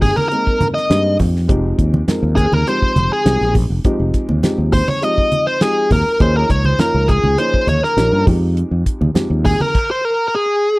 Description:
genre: electric jazz fusion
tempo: 102 BPM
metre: 4/4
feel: straight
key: F minor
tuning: A4 = 436 Hz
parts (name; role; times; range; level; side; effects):
- smooth overdriven lead guitar; melody; 0.0-10.8 s; Ab4 to Eb5; -16 LUFS; equal; slapback echo
- dark grand piano; accompaniment; 0.0-9.7 s; F3 to Bb4; -22 LUFS; equal; none
- fretless electric bass; bass; 0.0-9.5 s; F1 to G2; -16 LUFS; equal; none
- damped 70s drum kit; drums; 0.0-9.9 s; crash cymbal, hi-hat, kick drum, snare drum; -17 LUFS; equal; none
- congas; percussion; 0.0-9.7 s; none; -22 LUFS; right 1 dB; none
room: little or no reverb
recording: dry, close 1970s-style studio recording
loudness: -13 LUFS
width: side -22 dB against mid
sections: 0.0-10.8 A section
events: none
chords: 0.0 Abmaj9; 1.5 Fm9; 6.2 Eb7sus4; 8.3 Fm9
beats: 0.31 0.90 | 1.49 2.08 2.67 3.26 | 3.85 4.43 5.02 5.61 | 6.20 6.79 7.38 7.97 | 8.56 9.15 9.74 10.33

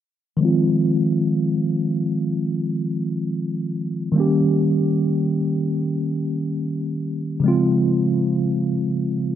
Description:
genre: R&B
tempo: free time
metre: none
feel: none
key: F minor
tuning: A4 = 438 Hz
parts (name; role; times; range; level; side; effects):
- mellow tine electric piano; accompaniment; 0.4-9.4 s; Db3 to G4; -19 LUFS; equal; medium stereo tremolo, low-pass filter
room: light reverb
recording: none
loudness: -19 LUFS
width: side -10 dB against mid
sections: 0.4-9.4 A section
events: filter sweep on tine electric piano 0.4-9.4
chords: 0.4 Fm7; 4.2 Eb7; 7.4 Dbmaj7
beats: free time

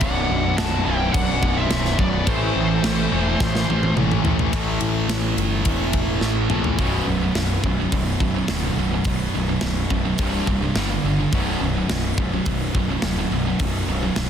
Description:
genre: heavy metal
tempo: 106 BPM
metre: 4/4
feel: straight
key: B phrygian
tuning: A4 = 440 Hz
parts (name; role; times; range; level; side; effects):
- high-gain lead guitar; melody; 0.0-3.9 s; C5 to A5; -27 LUFS; equal; distortion, digital delay
- high-gain lead guitar; second line; 0.0-3.9 s; A3 to F#4; -31 LUFS; right 2 dB; distortion
- heavy high-gain guitar; riff; 0.0-14.3 s; B1 to A3; -25 LUFS; right 8 dB; distortion
- sludgy distorted guitar; riff; 0.0-14.3 s; B1 to A3; -28 LUFS; left 10 dB; overdrive
- sludgy distorted guitar; riff; 0.0-14.3 s; B1 to A3; -27 LUFS; left 1 dB; overdrive
- fuzz picked electric bass; bass; 0.0-14.3 s; B0 to A#1; -25 LUFS; equal; overdrive
- tight metal drum kit; drums; 0.0-14.3 s; crash cymbal, hi-hat, kick drum, ride cymbal, snare drum, toms; -25 LUFS; equal; none
room: little or no reverb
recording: dense, heavily limited modern master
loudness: -19 LUFS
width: side -8 dB against mid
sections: 0.0-4.5 A section; 4.5-6.8 B section; 6.8-14.3 C section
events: drum fill 3.4-4.5, 6.2-6.8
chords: 0.0 Bm; 2.3 Am; 4.5 A5; 6.8 B5; 10.2 C5; 10.8 G5; 11.3 B5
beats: | 0.01 0.57 1.14 1.70 | 2.27 2.83 3.40 3.96 | 4.53 5.09 5.66 6.22 | 6.79 7.36 7.92 8.49 | 9.06 9.63 10.20 10.76 | 11.33 11.90 12.47 13.04 | 13.61 14.17

